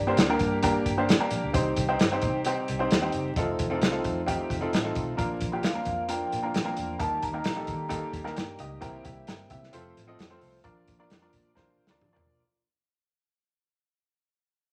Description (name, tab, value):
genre	uptempo 1960s-style soul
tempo	132 BPM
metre	4/4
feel	straight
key	Bb major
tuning	A4 = 440 Hz
part	tonewheel organ	sustained chords	0.0-12.5 s	F3 to G4	-40 LUFS	equal	none
part	vintage muted fingered electric bass	bass	0.0-12.4 s	F1 to Eb3	-38 LUFS	equal	none
part	bright upright piano	accompaniment	0.1-12.4 s	Bb3 to G5	-32 LUFS	equal	none
part	warm soul drum kit	drums	0.2-12.3 s	hi-hat, kick drum, snare drum, toms	-30 LUFS	equal	none
part	vibraphone with medium mallets	melody	5.7-8.1 s	F5 to Bb5	-35 LUFS	equal	none
room	moderate large studio reverb, RT60 0.9 s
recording	vinyl crackle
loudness	-27 LUFS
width	mono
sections	0.0-12.5 A section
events	fade-out 0.8-12.5; drum fill 11.6-12.5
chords	0.0 Gm; 1.5 Cm; 3.4 F7; 5.2 Bb; 7.0 Eb; 8.8 C7; 9.7 F; 10.7 Bb